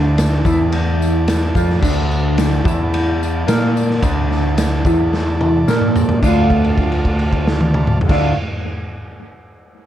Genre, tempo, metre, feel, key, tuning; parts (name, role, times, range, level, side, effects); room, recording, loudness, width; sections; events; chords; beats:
psychedelic rock; 109 BPM; 4/4; straight; D minor; A4 = 439 Hz
combo organ; sustained chords; 0.0-8.3 s; F4 to A5; -28 LUFS; right 3 dB
mellow electric guitar; riff; 0.0-8.4 s; D3 to Bb4; -18 LUFS; equal; phaser, double-tracked left and right
growling picked electric bass; bass; 0.0-8.3 s; D2 to Bb2; -18 LUFS; equal; overdrive
raw garage drum kit; drums; 0.2-8.2 s; crash cymbal, kick drum, ride cymbal, snare drum, toms; -19 LUFS; equal
tambourine; percussion; 0.2-6.5 s; -39 LUFS; left 14 dB; analog delay
small room ambience; echo-heavy mix; -14 LUFS; side -11 dB against mid
0.0-6.2 A section; 6.2-8.4 B section
drum fill 5.1-6.2; held note 6.2-8.1
0.0 Dm
0.17 0.72 1.27 | 1.82 2.38 2.92 3.48 | 4.03 4.58 5.12 5.67 | 6.22 6.77 7.32 7.87